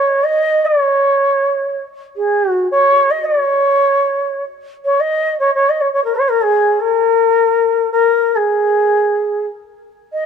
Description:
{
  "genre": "indian classical",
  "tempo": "free time",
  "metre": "none",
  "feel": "none",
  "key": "unclear",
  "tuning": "A4 = 439 Hz",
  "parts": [
    { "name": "mellow bansuri", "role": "solo", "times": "0.0-10.3 s", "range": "Ab4 to Eb5", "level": "-12 LUFS", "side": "equal", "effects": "none" }
  ],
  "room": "moderate plate reverb, RT60 3.4 s",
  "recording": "none",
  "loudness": "-12 LUFS",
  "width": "side -6 dB against mid",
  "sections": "0.0-10.3 A section",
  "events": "none",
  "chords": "none"
}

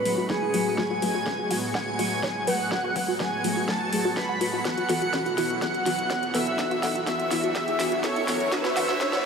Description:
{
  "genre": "progressive house",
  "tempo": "124 BPM",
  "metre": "4/4",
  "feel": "straight",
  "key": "F# minor",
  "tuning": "A4 = 440 Hz",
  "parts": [
    { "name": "wide unison lead", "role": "melody", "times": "0.0-9.3 s", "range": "G#4 to B5", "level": "-28 LUFS", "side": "equal", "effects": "lush chorus, sidechain pumping, tape echo" },
    { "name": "airy dreamy lead", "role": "second line", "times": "0.0-9.3 s", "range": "G#5 to B6", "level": "-34 LUFS", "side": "equal", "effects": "chorus, sidechain pumping, ping-pong delay" },
    { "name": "supersaw pad", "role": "sustained chords", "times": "0.0-9.3 s", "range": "A2 to F#4", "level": "-34 LUFS", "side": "right 2 dB", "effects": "sidechain pumping" },
    { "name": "backwards swelling texture", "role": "texture", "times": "0.0-9.3 s", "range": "C#7", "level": "-38 LUFS", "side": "right 4 dB", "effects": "built-in reverb, lush chorus, sidechain pumping" },
    { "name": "deep mellow chord stab", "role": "stabs", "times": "0.1-9.1 s", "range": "E3 to B4", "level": "-31 LUFS", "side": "left 3 dB", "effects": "chorus, sidechain pumping, ping-pong delay" },
    { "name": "deep house drum kit", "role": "drums", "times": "0.1-9.2 s", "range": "hi-hat, snare drum", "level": "-32 LUFS", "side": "equal", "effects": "overdrive, high-pass filter on snare, small room ambience, high-pass filter on hats" },
    { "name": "tight sequenced synth", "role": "arpeggios", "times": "0.2-9.2 s", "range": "C#4 to F#5", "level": "-31 LUFS", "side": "equal", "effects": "chorus, phaser, cassette tape, sidechain pumping, ping-pong delay" },
    { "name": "electronic kick drum", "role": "drums", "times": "0.3-9.1 s", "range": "none", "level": "-36 LUFS", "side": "equal", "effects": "overdrive, high-pass filter on kick, small room ambience" },
    { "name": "riser", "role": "sound effects", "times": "6.2-9.3 s", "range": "none", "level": "-33 LUFS", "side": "right 2 dB", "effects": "none" }
  ],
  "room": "wet huge ambient reverb, RT60 6.1 s",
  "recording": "dreamy mix soaked in reverb, high-pass filter",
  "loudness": "-23 LUFS",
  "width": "side -6 dB against mid",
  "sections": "0.0-9.3 A section",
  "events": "build-up 0.0-9.3; drum fill 0.0-9.3; filter sweep on synth arpeggio sound 0.0-9.3; filter sweep on synth stab 0.0-9.3; riser 6.2-9.3",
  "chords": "0.0 F#madd9; 4.7 Esus2; 8.5 Dadd9"
}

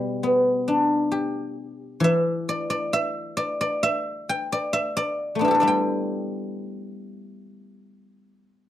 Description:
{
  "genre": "chinese traditional, Chinese solo plucked strings",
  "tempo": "66 BPM",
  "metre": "4/4",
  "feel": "rubato",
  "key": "G gong mode",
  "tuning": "A4 = 445 Hz",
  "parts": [
    { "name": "guzheng", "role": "solo", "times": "0.0-8.7 s", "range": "B2 to G5", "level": "-22 LUFS", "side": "left 1 dB", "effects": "none" }
  ],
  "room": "light reverb",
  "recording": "dry, close 1970s-style studio recording",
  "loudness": "-22 LUFS",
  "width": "side -12 dB against mid",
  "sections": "0.0-8.7 A section",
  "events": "none",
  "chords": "none"
}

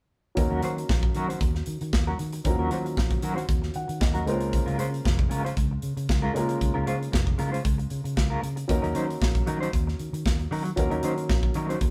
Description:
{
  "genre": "disco",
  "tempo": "115 BPM",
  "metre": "4/4",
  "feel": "straight",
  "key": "Eb dorian",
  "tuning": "A4 = 439 Hz",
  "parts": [
    { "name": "dark grand piano", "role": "accompaniment", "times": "0.3-11.9 s", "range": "F3 to Gb5", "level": "-34 LUFS", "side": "equal", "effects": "none" },
    { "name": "clean electric guitar", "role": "accompaniment", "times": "0.4-11.9 s", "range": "Gb3 to C5", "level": "-34 LUFS", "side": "equal", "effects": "tremolo" },
    { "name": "fingered electric bass", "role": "bass", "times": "0.4-11.9 s", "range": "F1 to Eb3", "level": "-32 LUFS", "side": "equal", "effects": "none" },
    { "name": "modern studio drum kit", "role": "drums", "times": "0.4-11.9 s", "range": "hi-hat, kick drum, snare drum", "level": "-29 LUFS", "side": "equal", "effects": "none" }
  ],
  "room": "light reverb",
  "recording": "band playing live in one room",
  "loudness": "-26 LUFS",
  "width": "mono",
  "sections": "0.4-11.9 A section",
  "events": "grand piano fill 3.5-4.5",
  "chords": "0.4 Ebm7; 4.3 Bbm7; 8.7 Ebm7"
}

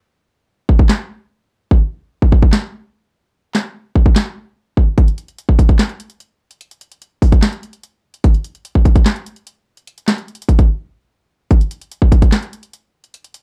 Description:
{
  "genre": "hip hop",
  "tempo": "147 BPM",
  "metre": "4/4",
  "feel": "half-time",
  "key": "none",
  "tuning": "none",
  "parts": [
    { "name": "trap drum kit", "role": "drums", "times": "0.7-13.4 s", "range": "handclaps, hi-hat, kick drum, snare drum", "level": "-13 LUFS", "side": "equal", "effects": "none" }
  ],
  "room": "little or no reverb",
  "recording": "none",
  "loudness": "-15 LUFS",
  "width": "mono",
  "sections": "0.0-11.5 A section; 11.5-13.4 B section",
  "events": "break 0.0-5.0, 10.7-11.5",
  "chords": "none"
}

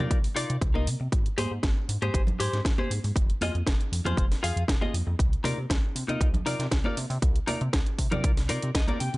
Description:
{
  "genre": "nu-disco, nu disco",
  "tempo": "118 BPM",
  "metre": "4/4",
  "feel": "straight",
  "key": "C minor",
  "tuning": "A4 = 438 Hz",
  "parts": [
    { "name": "direct-recorded clean electric guitar", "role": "riff", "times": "0.0-9.2 s", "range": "Eb4 to G5", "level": "-31 LUFS", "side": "left 2 dB", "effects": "lush chorus, slapback echo" },
    { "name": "chorused synth bass", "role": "bass", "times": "0.0-9.2 s", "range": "F1 to C3", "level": "-29 LUFS", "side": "equal", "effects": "none" },
    { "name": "electronic kick drum", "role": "drums", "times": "0.1-8.9 s", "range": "none", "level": "-26 LUFS", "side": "equal", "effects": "overdrive" },
    { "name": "house drum kit", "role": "drums", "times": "0.1-9.2 s", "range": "hi-hat, snare drum", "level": "-34 LUFS", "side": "right 1 dB", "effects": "overdrive" },
    { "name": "congas", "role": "percussion", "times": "0.8-9.0 s", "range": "none", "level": "-36 LUFS", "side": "right 2 dB", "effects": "none" }
  ],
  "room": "little or no reverb",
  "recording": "nothing above 10.7 kHz",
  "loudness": "-24 LUFS",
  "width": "side -21 dB against mid",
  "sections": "0.0-9.2 A section",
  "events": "clean electric guitar fill 8.5-9.2",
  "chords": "0.0 Cm11; 1.1 Abmaj7; 3.2 Fm7; 5.2 Cm11"
}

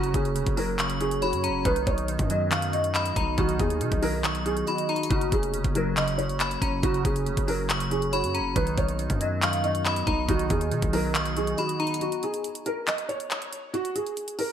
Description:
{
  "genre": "hip hop, trap",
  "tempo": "139 BPM",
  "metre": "4/4",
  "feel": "half-time",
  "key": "unclear",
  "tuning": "A4 = 439 Hz",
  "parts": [
    { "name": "felt-muted upright piano", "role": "melody", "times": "0.0-14.5 s", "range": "F#4 to E#5", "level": "-29 LUFS", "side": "right 1 dB", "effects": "ensemble chorus" },
    { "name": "glassy digital keys", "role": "accompaniment", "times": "0.0-12.0 s", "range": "C#3 to D#5", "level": "-30 LUFS", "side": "right 2 dB", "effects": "chorus" },
    { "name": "glass harmonica", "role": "sustained chords", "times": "0.0-12.0 s", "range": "A#3 to D#5", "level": "-36 LUFS", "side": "equal", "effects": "none" },
    { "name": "hard-hitting 808-style bass", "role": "bass", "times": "0.0-11.6 s", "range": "E#1 to B2", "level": "-30 LUFS", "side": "equal", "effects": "none" },
    { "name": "trap drum kit", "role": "drums", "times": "0.0-14.5 s", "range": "handclaps, hi-hat, kick drum", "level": "-29 LUFS", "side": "equal", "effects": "gated reverb" },
    { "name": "metallic FM bell", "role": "second line", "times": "0.8-12.0 s", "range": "A#5 to C#6", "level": "-33 LUFS", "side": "left 5 dB", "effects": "chorus, ping-pong delay" }
  ],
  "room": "light reverb, digital ambience",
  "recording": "bright 1980s-style digital production",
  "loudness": "-24 LUFS",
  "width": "side -9 dB against mid",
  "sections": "0.0-12.0 A section; 12.0-14.5 B section",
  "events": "break 12.0-14.5",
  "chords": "0.0 F#; 1.7 B; 5.1 F#; 8.6 B; 12.0 N.C."
}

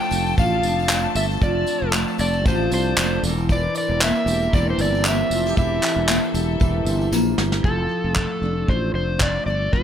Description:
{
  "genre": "acoustic pop",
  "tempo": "116 BPM",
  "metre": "4/4",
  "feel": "swing 55% on 16ths",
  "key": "F major",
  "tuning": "A4 = 441 Hz",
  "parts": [
    { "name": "overdriven slide guitar", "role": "melody", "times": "0.0-9.8 s", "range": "A4 to G5", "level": "-25 LUFS", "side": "left 1 dB", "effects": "digital delay" },
    { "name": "picked steel-string acoustic guitar", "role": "accompaniment", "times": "0.0-9.8 s", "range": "E3 to A4", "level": "-24 LUFS", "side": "equal", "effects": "double-tracked left and right" },
    { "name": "warm studio string section", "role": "sustained chords", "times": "0.0-7.6 s", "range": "E3 to A5", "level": "-31 LUFS", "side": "left 3 dB", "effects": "none" },
    { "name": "tambourine", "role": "percussion", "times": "0.0-7.5 s", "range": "none", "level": "-38 LUFS", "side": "left 5 dB", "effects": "none" },
    { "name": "sustaining fretless electric bass", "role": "bass", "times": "0.1-9.8 s", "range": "E1 to C2", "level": "-24 LUFS", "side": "equal", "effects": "none" },
    { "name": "vintage brush drum kit", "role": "drums", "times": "0.1-9.8 s", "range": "handclaps, kick drum, snare drum, tambourine", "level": "-23 LUFS", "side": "equal", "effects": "none" }
  ],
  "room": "little or no reverb",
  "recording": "none",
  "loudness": "-18 LUFS",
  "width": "side -9 dB against mid",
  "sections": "0.0-7.6 A section; 7.6-9.8 B section",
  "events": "drum fill 7.1-7.6",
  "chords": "0.0 F6; 3.2 C7/E; 7.6 F6"
}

